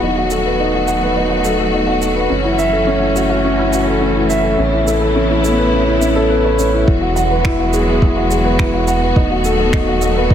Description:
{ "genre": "piano and strings electronica", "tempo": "105 BPM", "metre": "4/4", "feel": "straight", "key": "E major", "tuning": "A4 = 439 Hz", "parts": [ { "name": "clear symphonic string section", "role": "sustained chords", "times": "0.0-10.3 s", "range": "C#3 to F#4", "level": "-18 LUFS", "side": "left 2 dB", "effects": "none" }, { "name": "dark grand piano", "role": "riff", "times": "0.0-10.3 s", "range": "C#4 to F#5", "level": "-16 LUFS", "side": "equal", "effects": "digital delay" }, { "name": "round analog bass", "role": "bass", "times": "0.0-10.3 s", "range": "D#1 to A1", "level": "-20 LUFS", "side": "equal", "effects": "sidechain pumping" }, { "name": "electronic shaker and finger snaps", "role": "drums", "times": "0.3-10.1 s", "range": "none", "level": "-26 LUFS", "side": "right 3 dB", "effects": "high-pass filter on perc, high-pass filter on snare, high-pass filter on room" }, { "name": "electronic kick drum", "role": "drums", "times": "6.9-10.3 s", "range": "none", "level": "-14 LUFS", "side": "equal", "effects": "none" } ], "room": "moderate echo chamber reverb, RT60 1.4 s, digital ambience", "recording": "none", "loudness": "-12 LUFS", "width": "side -9 dB against mid", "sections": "0.0-6.9 A section; 6.9-10.3 B section", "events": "build-up 0.0-6.9; drop 6.9-10.3", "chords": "0.0 B7/D#; 2.3 F#m7; 4.6 Aadd9; 6.9 Eadd9; 9.2 B7/D#", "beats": "| 0.02 0.59 1.16 1.73 | 2.30 2.88 3.45 4.02 | 4.59 5.16 5.73 6.30 | 6.88 7.45 8.02 8.59 | 9.16 9.73 10.30" }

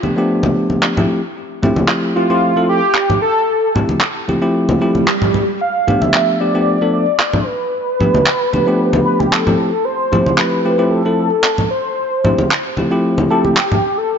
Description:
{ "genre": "nu-disco, nu disco", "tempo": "113 BPM", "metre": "4/4", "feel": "straight", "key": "unclear", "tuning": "A4 = 442 Hz", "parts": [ { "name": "wide unison lead", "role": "melody", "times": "0.0-14.2 s", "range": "F4 to F5", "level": "-17 LUFS", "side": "equal", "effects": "lush chorus, ping-pong delay" }, { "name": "bell-like tine electric piano", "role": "accompaniment", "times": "0.0-13.5 s", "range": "F3 to A4", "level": "-17 LUFS", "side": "equal", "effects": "vintage 12-bit sampler grit, ping-pong delay" }, { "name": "congas", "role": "percussion", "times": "0.0-13.8 s", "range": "none", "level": "-19 LUFS", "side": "left 1 dB", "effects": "none" }, { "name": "handclaps", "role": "drums", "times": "0.8-13.7 s", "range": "none", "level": "-19 LUFS", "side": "right 1 dB", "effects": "low-pass filter on snare, small room reverb, low-pass filter on room" }, { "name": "swell", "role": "sound effects", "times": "4.8-5.6 s", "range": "none", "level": "-20 LUFS", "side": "right 4 dB", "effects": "none" } ], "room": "light reverb, studio ambience", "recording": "nothing above 7.6 kHz", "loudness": "-13 LUFS", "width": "side -7 dB against mid", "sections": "0.0-14.2 A section", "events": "swell 4.8-5.6", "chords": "0.0 G9; 1.1 Fmaj9; 5.6 G9; 9.6 Fmaj9", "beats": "0.30 0.83 | 1.36 1.90 2.43 2.96 | 3.49 4.02 4.55 5.08 | 5.61 6.14 6.67 7.21 | 7.74 8.27 8.80 9.33 | 9.86 10.39 10.92 11.45 | 11.98 12.52 13.05 13.58 | 14.11" }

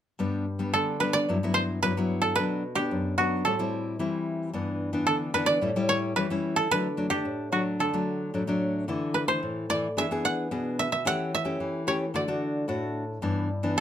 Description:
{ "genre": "samba", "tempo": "110 BPM", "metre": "4/4", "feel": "straight", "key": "G major", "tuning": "A4 = 440 Hz", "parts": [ { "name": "nylon-string guitar", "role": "accompaniment", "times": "0.2-13.8 s", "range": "F#2 to G#4", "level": "-28 LUFS", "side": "left 2 dB", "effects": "none" }, { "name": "koto", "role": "melody", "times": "0.7-13.8 s", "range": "F#4 to F#5", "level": "-27 LUFS", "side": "right 2 dB", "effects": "none" } ], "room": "moderate studio reverb, RT60 0.5 s", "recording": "close, detailed microphones", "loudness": "-25 LUFS", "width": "side -10 dB against mid", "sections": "0.2-13.8 A section", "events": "none", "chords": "0.2 G; 1.3 Emadd9/G; 2.4 Bm; 3.4 Am7; 4.5 G6; 5.6 A7; 6.7 D; 8.9 Dsus2; 10.0 E7; 11.1 A7/E; 12.1 D; 13.2 G6", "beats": "| 0.19 0.73 1.27 1.82 | 2.36 2.90 3.45 3.99 | 4.53 5.08 5.62 6.16 | 6.71 7.25 7.79 8.34 | 8.88 9.42 9.96 10.51 | 11.05 11.59 12.14 12.68 | 13.22 13.77" }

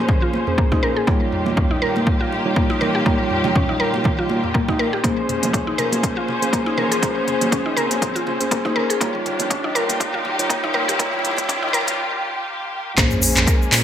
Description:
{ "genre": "afro house", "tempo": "121 BPM", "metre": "4/4", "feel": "swing 56% on 16ths", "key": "Bb dorian", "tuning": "A4 = 440 Hz", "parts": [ { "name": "rich studio string section", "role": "sustained chords", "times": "0.0-13.8 s", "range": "Bb2 to C5", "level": "-24 LUFS", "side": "equal", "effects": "sidechain pumping" }, { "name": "mellow tine electric piano", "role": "stabs", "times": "0.0-13.8 s", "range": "G3 to Db5", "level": "-25 LUFS", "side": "equal", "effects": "medium stereo tremolo, sidechain pumping, low-pass filter, digital delay" }, { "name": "riser and sub drop", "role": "sound effects", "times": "4.7-13.8 s", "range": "none", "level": "-30 LUFS", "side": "equal", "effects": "none" }, { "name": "afro-pop drum kit", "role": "drums", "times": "0.1-13.8 s", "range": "handclaps, hi-hat, toms", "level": "-23 LUFS", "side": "equal", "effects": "gated reverb" }, { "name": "electronic kick drum", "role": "drums", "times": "0.1-13.6 s", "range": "none", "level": "-20 LUFS", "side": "equal", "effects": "overdrive" }, { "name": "congas", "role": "percussion", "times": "0.1-12.0 s", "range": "none", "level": "-28 LUFS", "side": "right 2 dB", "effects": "none" }, { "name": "mallet-like synth pluck", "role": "arpeggios", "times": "0.2-13.5 s", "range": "Bb3 to Bb4", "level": "-24 LUFS", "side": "left 1 dB", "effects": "chorus, sidechain pumping, digital delay" }, { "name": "smooth synth bass", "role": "bass", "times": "13.0-13.8 s", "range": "Bb1 to Bb2", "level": "-23 LUFS", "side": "equal", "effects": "sidechain pumping" }, { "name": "cabasa", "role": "percussion", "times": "13.0-13.8 s", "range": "none", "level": "-28 LUFS", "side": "left 1 dB", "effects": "none" } ], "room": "moderate plate reverb, RT60 1.4 s", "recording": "bright 1980s-style digital production, high-pass filter", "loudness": "-17 LUFS", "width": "side -10 dB against mid", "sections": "0.0-13.0 A section", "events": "build-up 0.0-13.0; drum fill 0.0-12.0; filter sweep on tine electric piano 0.0-13.0; filter sweep 0.0-13.0; riser 4.7-12.0; break 12.0-13.0; impact 13.0-13.8", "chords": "0.0 Bbm9; 1.1 Eb9/Bb; 5.0 Bbm9; 9.0 Eb9/Bb; 13.0 Bbm9", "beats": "0.09 0.58 | 1.08 1.57 2.07 2.56 | 3.06 3.56 4.05 4.55 | 5.04 5.54 6.04 6.53 | 7.03 7.52 8.02 8.52 | 9.01 9.51 10.00 10.50 | 10.99 11.49 11.99 12.48 | 12.98 13.47" }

